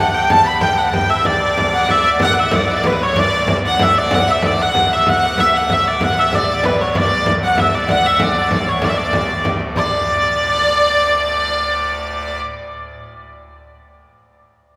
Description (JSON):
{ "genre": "medieval dance", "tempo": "127 BPM (dotted quarters)", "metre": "6/8", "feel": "straight", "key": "D major", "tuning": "A4 = 440 Hz", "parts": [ { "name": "clear hurdy-gurdy", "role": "melody", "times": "0.0-12.4 s", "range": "B4 to B5", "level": "-18 LUFS", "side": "equal", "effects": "none" }, { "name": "dark fiddle", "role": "second line", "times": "0.0-12.4 s", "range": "B4 to B5", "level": "-24 LUFS", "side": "equal", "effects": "none" }, { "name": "pipe organ, clarinet reed", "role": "drone", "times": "0.0-12.4 s", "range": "D2 to A2", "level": "-30 LUFS", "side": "equal", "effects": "none" }, { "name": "frame drum", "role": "percussion", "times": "0.3-9.9 s", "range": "none", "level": "-22 LUFS", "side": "equal", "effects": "none" } ], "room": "wet cathedral reverb, RT60 4.3 s", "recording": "band playing live in one room", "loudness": "-16 LUFS", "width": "mono", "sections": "0.0-2.2 A section; 2.2-9.8 B section; 9.8-11.6 C section", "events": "speeding up 0.0-11.6", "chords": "none" }